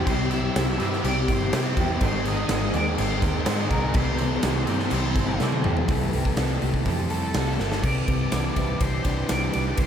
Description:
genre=rock, shoegaze and dream pop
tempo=124 BPM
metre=4/4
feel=straight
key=C major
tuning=A4 = 438 Hz
part: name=fingerpicked twelve-string acoustic guitar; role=arpeggios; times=0.0-9.9 s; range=Eb3 to Ab4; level=-33 LUFS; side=equal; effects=lush chorus, analog delay
part: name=direct-recorded clean electric guitar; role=riff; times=0.0-9.9 s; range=C3 to Bb4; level=-30 LUFS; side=right 7 dB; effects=reverse reverb
part: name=raw garage guitar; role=riff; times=0.0-5.9 s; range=Ab2 to C4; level=-31 LUFS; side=left 1 dB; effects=overdrive
part: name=thick fuzz guitar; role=riff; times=0.0-9.9 s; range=Ab2 to E4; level=-30 LUFS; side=left 8 dB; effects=distortion, lush chorus
part: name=vintage muted fingered electric bass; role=bass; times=0.0-9.9 s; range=G1 to C3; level=-27 LUFS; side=equal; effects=none
part: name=octave-fuzz lead guitar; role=melody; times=0.1-9.9 s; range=A4 to E5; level=-33 LUFS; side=equal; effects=distortion, analog delay
part: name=big rock drum kit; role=drums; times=0.1-9.9 s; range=crash cymbal, hi-hat, kick drum, ride cymbal, snare drum, toms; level=-27 LUFS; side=equal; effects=none
part: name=tambourine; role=percussion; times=0.3-9.7 s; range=none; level=-46 LUFS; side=right 10 dB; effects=none
room=moderate huge ambient reverb, RT60 6.5 s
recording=dreamy mix soaked in reverb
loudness=-21 LUFS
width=side -8 dB against mid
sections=0.0-5.9 A section; 5.9-7.8 B section; 7.8-9.9 C section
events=drum fill 5.4-5.9, 7.6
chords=0.0 C; 2.0 Abadd9; 4.0 C6; 7.8 Cadd9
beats=| 0.08 0.56 1.05 1.53 | 2.02 2.50 2.98 3.47 | 3.95 4.44 4.92 5.41 | 5.89 6.38 6.87 7.35 | 7.84 8.32 8.81 9.30 | 9.79

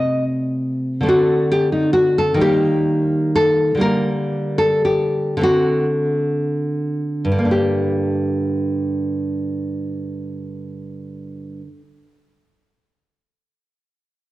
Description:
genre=romantic piece for solo classical guitar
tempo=26-50 BPM (dotted quarters)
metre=6/8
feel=rubato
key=G minor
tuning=A4 = 439 Hz
part: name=nylon-string guitar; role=solo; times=0.0-11.9 s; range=G2 to Eb5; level=-17 LUFS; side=equal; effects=none
room=moderate recital hall reverb, RT60 1.4 s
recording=worn, warbling old tape, cassette tape, warbly pitch drift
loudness=-16 LUFS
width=side -16 dB against mid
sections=0.0-7.5 A section; 7.5-11.5 B section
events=slowing down 0.0-7.5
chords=0.0 Cm6; 1.1 D5; 2.4 Eb; 3.8 Gm/D; 5.4 D7; 7.5 Gm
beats=| 1.10 2.41 | 3.81 5.43 | 7.51 9.50

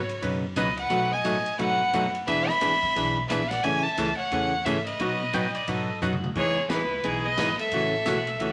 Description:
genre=country, western swing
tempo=176 BPM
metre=4/4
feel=swing 62% on 8ths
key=E major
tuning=A4 = 440 Hz
part: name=clear fiddle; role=melody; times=0.0-8.5 s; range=G#4 to B5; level=-29 LUFS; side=equal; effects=none
part: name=clear fiddle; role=second line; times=0.0-8.5 s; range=E4 to E5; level=-35 LUFS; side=equal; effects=none
part: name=upright bass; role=bass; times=0.0-8.5 s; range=E1 to B2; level=-39 LUFS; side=equal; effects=none
part: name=swinging big-band drum kit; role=drums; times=0.1-8.5 s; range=crash cymbal, hi-hat, kick drum, ride cymbal, snare drum, toms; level=-39 LUFS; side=equal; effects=none
part: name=archtop guitar, miked and amplified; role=accompaniment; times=0.2-8.5 s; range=B2 to B4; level=-31 LUFS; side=equal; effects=none
part: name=pedal steel guitar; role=second line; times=5.3-8.5 s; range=F#4 to G5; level=-36 LUFS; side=equal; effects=none
room=wet studio reverb, RT60 0.7 s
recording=none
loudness=-26 LUFS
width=mono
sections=0.0-6.4 A section; 6.4-8.5 B section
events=drum fill 6.0-6.4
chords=0.0 Badd9; 0.9 B7; 2.3 E7; 3.6 Amaj7; 5.0 B; 6.4 Emaj7; 7.7 A6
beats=0.23 0.57 | 0.91 1.25 1.59 1.93 | 2.27 2.62 2.96 3.30 | 3.64 3.98 4.32 4.66 | 5.00 5.34 5.68 6.02 | 6.36 6.70 7.04 7.38 | 7.72 8.06 8.40

